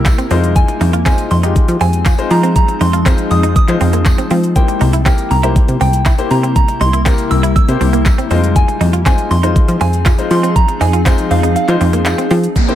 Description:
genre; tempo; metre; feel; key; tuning
dance-pop; 120 BPM; 4/4; straight; F minor; A4 = 439 Hz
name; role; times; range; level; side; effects
soft synth bell; melody; 0.0-12.3 s; F5 to E6; -20 LUFS; right 2 dB; chorus, digital delay
clear concert grand piano; accompaniment; 0.0-12.8 s; Ab3 to C5; -21 LUFS; left 6 dB; sidechain pumping
granular cloud pad; sustained chords; 0.0-12.8 s; C3 to Ab4; -21 LUFS; left 1 dB; built-in reverb, sidechain pumping
plucky analog bass; bass; 0.0-12.5 s; C2 to F3; -14 LUFS; equal; sidechain pumping
direct-recorded clean electric guitar; riff; 0.1-12.4 s; Bb3 to F4; -22 LUFS; right 6 dB; wide subtle chorus
smooth R&B drum kit; drums; 0.1-12.8 s; handclaps, hi-hat, kick drum, shaker; -14 LUFS; equal; none
tambourine; percussion; 0.1-12.2 s; none; -35 LUFS; left 4 dB; none
marimba with medium hard mallets; arpeggios; 12.6-12.8 s; Bb3 to C4; -19 LUFS; right 14 dB; sidechain pumping
downlifter; sound effects; 12.6-12.8 s; none; -20 LUFS; right 1 dB; none
room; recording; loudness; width
little or no reverb; none; -10 LUFS; side -12 dB against mid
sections
0.0-12.6 A section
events
kick muted 11.6-12.6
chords
0.3 Fm7; 4.6 C7; 8.3 Fm7

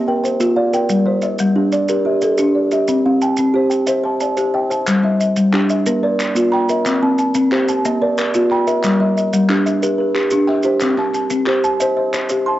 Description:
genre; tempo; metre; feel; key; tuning
southern african traditional, mbira-style interlocking cycle; 121 BPM (dotted quarters); 12/8; straight; G equiheptatonic; A4 = 440 Hz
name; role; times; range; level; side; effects
folk marimba with soft mallets; arpeggios; 0.0-12.6 s; G3 to A5-29c; -17 LUFS; left 2 dB; none
kalimba; arpeggios; 0.0-12.6 s; G3 to C6; -18 LUFS; right 2 dB; none
maracas; percussion; 0.2-12.4 s; none; -29 LUFS; right 2 dB; none
group handclap; percussion; 4.9-12.3 s; none; -25 LUFS; left 1 dB; none
room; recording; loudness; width
moderate studio reverb, RT60 0.5 s; worn, warbling old tape, cassette tape, warbly pitch drift, nothing above 7.8 kHz; -14 LUFS; side -14 dB against mid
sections
0.0-4.9 A section; 4.9-12.6 B section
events
none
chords
0.0 Bb; 0.9 Gm; 2.9 C; 4.9 G5; 5.9 Bb; 6.9 C; 7.8 Bb; 8.8 Gm; 10.8 C

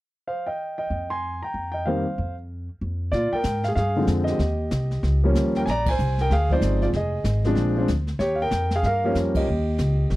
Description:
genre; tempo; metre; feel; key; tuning
jazz piano trio; 189 BPM; 4/4; swing 61% on 8ths; Bb mixolydian; A4 = 440 Hz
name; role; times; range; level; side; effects
warm concert grand piano; melody; 0.3-10.2 s; D3 to C6; -24 LUFS; equal; none
upright bass; bass; 0.9-10.2 s; F1 to Bb2; -24 LUFS; equal; none
jazz brush drum kit; drums; 3.1-10.2 s; brushed snare drum, hi-hat, kick drum, ride cymbal, snare drum; -30 LUFS; equal; none
room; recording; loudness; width
little or no reverb; dry, close 1970s-style studio recording; -21 LUFS; side -17 dB against mid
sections
0.6-3.1 A section; 3.1-10.2 B section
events
band accent 5.8, 9.3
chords
0.0 C5; 0.6 Cm7; 3.1 Bb7; 4.4 Eb7; 5.7 Bb7; 6.9 Fm7; 7.6 Bb7; 8.2 Eb7

